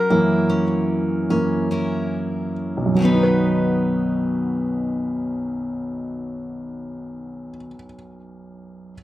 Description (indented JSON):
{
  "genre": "pop",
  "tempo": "69-76 BPM",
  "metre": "4/4",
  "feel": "straight",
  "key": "B major",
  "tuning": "A4 = 440 Hz",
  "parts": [
    { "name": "clear grand piano", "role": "accompaniment", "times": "0.0-9.0 s", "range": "B1 to B4", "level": "-22 LUFS", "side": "right 1 dB", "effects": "none" },
    { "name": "picked steel-string acoustic guitar", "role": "arpeggios", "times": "0.0-7.8 s", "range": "B2 to B4", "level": "-25 LUFS", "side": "left 3 dB", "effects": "slapback echo" }
  ],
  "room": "light reverb",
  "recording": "recorded outdoors, with no room sound",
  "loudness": "-19 LUFS",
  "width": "side -14 dB against mid",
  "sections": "0.0-3.0 A section; 3.0-6.4 B section",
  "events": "slowing down 0.0-3.0; grand piano solo 0.0-3.0",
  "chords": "0.0 F#7; 3.0 B",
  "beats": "0.50 1.30 2.14 | 3.00 3.86 4.71 5.57"
}